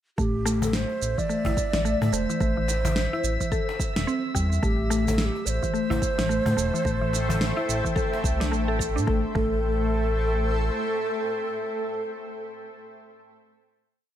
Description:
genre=organic downtempo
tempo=108 BPM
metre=4/4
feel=swing 60% on 16ths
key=A minor pentatonic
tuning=A4 = 440 Hz
part: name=breathy hollow low Native American-style wooden flute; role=melody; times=0.2-12.1 s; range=G4 to D5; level=-30 LUFS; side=right 1 dB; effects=digital delay
part: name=mallet-like synth pluck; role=arpeggios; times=0.2-9.5 s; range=E3 to A4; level=-28 LUFS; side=left 1 dB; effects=chorus, digital delay
part: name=smooth synth bass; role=bass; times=0.2-10.7 s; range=E1 to A2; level=-27 LUFS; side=equal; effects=none
part: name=electronic kick drum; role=drums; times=0.2-9.5 s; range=none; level=-28 LUFS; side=equal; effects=none
part: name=electronic shaker and snare drum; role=drums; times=0.2-9.1 s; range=none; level=-31 LUFS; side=right 1 dB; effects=none
part: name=drifting glass-harmonics texture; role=texture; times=0.6-9.1 s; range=E5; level=-37 LUFS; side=right 1 dB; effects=chorus, built-in reverb
part: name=cajon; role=percussion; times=0.5-8.2 s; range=none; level=-34 LUFS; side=left 3 dB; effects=none
part: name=granular cloud pad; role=sustained chords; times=6.1-12.1 s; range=A3 to G5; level=-31 LUFS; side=equal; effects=built-in reverb, sidechain pumping
room=moderate concert hall reverb, RT60 2.4 s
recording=none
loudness=-23 LUFS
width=side -11 dB against mid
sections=0.2-9.1 groove; 9.1-11.3 final chord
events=none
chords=0.2 Am7

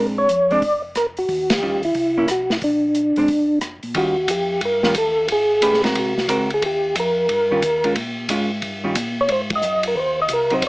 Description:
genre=soul jazz organ trio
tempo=180 BPM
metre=4/4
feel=swing 64% on 8ths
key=Eb mixolydian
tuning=A4 = 445 Hz
part: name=percussive tonewheel organ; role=melody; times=0.0-10.6 s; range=D4 to Eb5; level=-18 LUFS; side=equal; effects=slow rotary speaker, chorus vibrato
part: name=hollow-body jazz guitar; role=accompaniment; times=0.0-10.6 s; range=Eb3 to Cb5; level=-22 LUFS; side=right 1 dB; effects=none
part: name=mellow tonewheel organ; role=bass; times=0.0-10.7 s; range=F1 to Bb2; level=-32 LUFS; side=equal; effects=chorus vibrato, slow rotary speaker
part: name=vintage drum kit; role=drums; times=0.3-10.7 s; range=hi-hat, kick drum, ride cymbal, rim click, snare drum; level=-25 LUFS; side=equal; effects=none
room=light reverb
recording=small speaker sound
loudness=-17 LUFS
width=side -22 dB against mid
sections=0.0-4.0 A section; 4.0-10.7 A section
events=band accent 1.5, 9.5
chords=0.0 Bb9; 1.3 Eb9; 2.0 C7b9; 2.6 Bb; 4.0 Eb9; 5.3 Ab9; 6.6 Eb9; 8.0 Bbm7; 8.6 Eb9; 9.3 Ab7

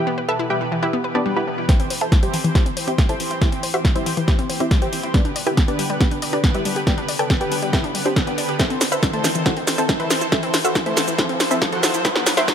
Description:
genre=uplifting trance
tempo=139 BPM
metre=4/4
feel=straight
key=unclear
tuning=A4 = 440 Hz
part: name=wide unison pluck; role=melody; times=0.0-12.5 s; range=B3 to C6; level=-25 LUFS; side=right 1 dB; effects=sidechain pumping, digital delay
part: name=lush unison pad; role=sustained chords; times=0.0-12.5 s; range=B2 to C5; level=-27 LUFS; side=equal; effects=chorus, sidechain pumping
part: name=wide unison pluck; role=arpeggios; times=0.0-12.5 s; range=E3 to G5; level=-26 LUFS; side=left 3 dB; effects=sidechain pumping, digital delay
part: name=electronic kick drum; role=drums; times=1.7-12.5 s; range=none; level=-18 LUFS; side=equal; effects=overdrive, studio reverb
part: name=punchy analog drum machine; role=drums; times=1.7-12.5 s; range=hi-hat, shaker, snare drum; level=-22 LUFS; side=equal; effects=overdrive, studio reverb, sidechain pumping on hats, sidechain pumping on perc
part: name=riser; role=sound effects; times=3.3-12.5 s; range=none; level=-31 LUFS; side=equal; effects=none
room=light reverb, digital ambience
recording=high-pass filter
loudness=-17 LUFS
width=side -8 dB against mid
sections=0.0-1.7 A section; 1.7-12.5 B section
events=build-up 1.7-12.5; drum fill 1.7-12.5; filter sweep on synth pluck 1.7-12.5; filter sweep on synth arpeggio sound 1.7-12.5; filter sweep 1.7-12.5; riser 3.3-12.5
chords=0.0 Em/B; 1.7 C; 5.1 G; 8.6 Am

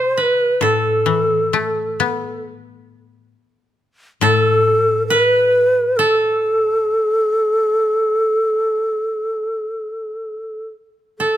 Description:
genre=japanese traditional, Japanese chamber music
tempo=66 BPM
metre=4/4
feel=rubato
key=A hirajoshi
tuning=A4 = 438 Hz
part: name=mellow long shakuhachi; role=melody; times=0.0-11.4 s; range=A4 to C5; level=-16 LUFS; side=equal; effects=none
part: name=koto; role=second line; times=0.0-11.4 s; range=A4 to C5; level=-21 LUFS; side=right 3 dB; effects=none
part: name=koto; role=accompaniment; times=0.0-6.9 s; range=A2 to B3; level=-21 LUFS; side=left 7 dB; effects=none
room=light reverb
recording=close, detailed microphones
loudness=-15 LUFS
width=side -12 dB against mid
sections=0.0-11.4 A section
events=none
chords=none

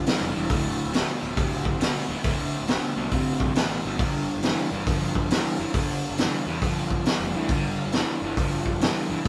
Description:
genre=blues rock power trio and southern rock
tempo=137 BPM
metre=4/4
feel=swing 65% on 8ths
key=unclear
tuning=A4 = 436 Hz
part: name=overdriven tonewheel organ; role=sustained chords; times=0.0-9.2 s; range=Bb3 to A4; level=-42 LUFS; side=equal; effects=none
part: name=crunchy overdriven guitar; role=riff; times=0.0-9.3 s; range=D2 to F3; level=-30 LUFS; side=equal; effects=none
part: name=vintage drum kit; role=drums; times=0.1-9.3 s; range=hi-hat, kick drum, snare drum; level=-28 LUFS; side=equal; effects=none
part: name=fuzz picked electric bass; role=bass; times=0.2-9.3 s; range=D1 to E2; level=-36 LUFS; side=equal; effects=overdrive
room=moderate studio reverb, RT60 0.8 s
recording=band playing live in one room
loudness=-25 LUFS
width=mono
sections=0.0-9.3 A section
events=none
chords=0.5 Dm9; 4.0 Gm9

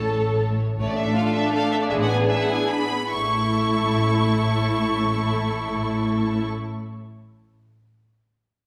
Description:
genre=quick classical-period movement for string orchestra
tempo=136-166 BPM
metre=3/4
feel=rubato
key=A major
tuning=A4 = 440 Hz
part: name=clear studio violin section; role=melody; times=0.0-6.5 s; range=C#5 to C#6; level=-30 LUFS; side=equal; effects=none
part: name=rich studio violin section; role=second line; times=0.0-6.5 s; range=G#3 to A5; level=-29 LUFS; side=equal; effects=none
part: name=rich studio viola section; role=accompaniment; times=0.0-6.5 s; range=A3 to A4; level=-28 LUFS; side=equal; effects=none
part: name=clear studio cello section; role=bass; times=0.0-6.5 s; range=A2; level=-29 LUFS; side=equal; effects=none
part: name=warm studio double bass section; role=bass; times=0.0-6.5 s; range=A1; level=-32 LUFS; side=equal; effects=none
room=wet recital hall reverb, RT60 1.4 s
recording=recorded in a church or concert hall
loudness=-22 LUFS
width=mono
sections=0.8-3.1 A section; 3.1-5.7 B section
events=slowing down 0.2-3.1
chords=0.0 A; 0.8 Dm/A; 1.9 E7/A; 3.1 A

